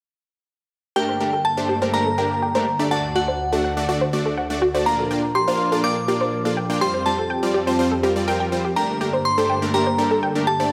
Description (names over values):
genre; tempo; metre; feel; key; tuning
house; 123 BPM; 4/4; straight; G minor; A4 = 441 Hz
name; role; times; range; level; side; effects
glassy synth bell; melody; 1.0-10.7 s; F#5 to D6; -26 LUFS; equal; chorus, phaser, digital delay
warm analog pad; sustained chords; 1.0-10.7 s; D2 to Bb4; -29 LUFS; equal; chorus
analog pluck; arpeggios; 1.0-10.7 s; F#4 to G5; -27 LUFS; equal; chorus, digital delay
supersaw stab; stabs; 1.0-10.7 s; G3 to G5; -26 LUFS; equal; digital delay
room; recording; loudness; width
moderate lush hall reverb, RT60 2.0 s, digital ambience; none; -21 LUFS; mono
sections
1.0-10.7 A section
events
filter sweep on synth pluck 1.0-10.7; filter sweep on analog synth pad 1.0-10.7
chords
1.0 Gmadd9; 2.9 D; 4.9 Bb; 6.8 Fsus2; 8.8 Gmadd9